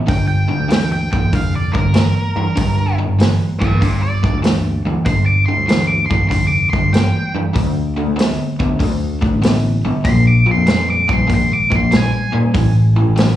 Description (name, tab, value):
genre	blues rock power trio and southern rock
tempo	96 BPM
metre	4/4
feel	swing 67% on 8ths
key	unclear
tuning	A4 = 440 Hz
part	crunchy overdriven guitar	riff	0.0-13.4 s	G2 to B3	-19 LUFS	equal	none
part	octave-fuzz lead guitar	melody	0.1-12.4 s	Bb4 to D6	-20 LUFS	equal	distortion, slapback echo, analog delay
part	picked electric bass	bass	0.1-13.4 s	F1 to Bb2	-17 LUFS	equal	none
part	vintage drum kit	drums	0.1-13.4 s	hi-hat, kick drum, snare drum	-18 LUFS	equal	none
room	light reverb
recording	live gig heard through the venue's PA, club reverb, small room ambience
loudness	-13 LUFS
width	side -12 dB against mid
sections	0.0-13.4 A section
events	none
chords	0.1 G5; 7.6 D5; 10.1 Bb5; 12.6 A5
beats	| 0.09 0.71 1.33 1.95 | 2.58 3.20 3.82 4.45 | 5.07 5.69 6.32 6.94 | 7.56 8.19 8.81 9.43 | 10.06 10.68 11.30 11.93 | 12.55 13.17